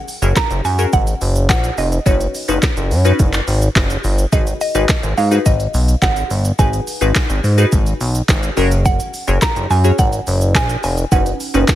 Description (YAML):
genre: dance-pop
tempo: 106 BPM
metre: 4/4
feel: straight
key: F# major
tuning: A4 = 439 Hz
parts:
  - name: mallet-like synth pluck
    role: melody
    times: 0.0-11.8 s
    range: C#5 to A#5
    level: -22 LUFS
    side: right 3 dB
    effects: chorus, phaser, digital delay
  - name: glassy wavetable pluck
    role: accompaniment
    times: 0.0-11.8 s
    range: C#4 to C#5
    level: -21 LUFS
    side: left 2 dB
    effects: chorus, sidechain pumping
  - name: smooth R&B drum kit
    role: drums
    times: 0.1-11.8 s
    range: handclaps, hi-hat, kick drum, shaker, snare drum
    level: -18 LUFS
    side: equal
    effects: none
  - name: chorused synth bass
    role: bass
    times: 0.2-11.7 s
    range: E#1 to G#2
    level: -16 LUFS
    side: equal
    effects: sidechain pumping
room: little or no reverb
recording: none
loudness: -13 LUFS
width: side -13 dB against mid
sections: 0.0-11.8 A section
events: none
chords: 0.0 F#add9; 2.1 Badd9/F#; 4.3 G#m7; 8.6 F#add9; 11.1 Badd9/F#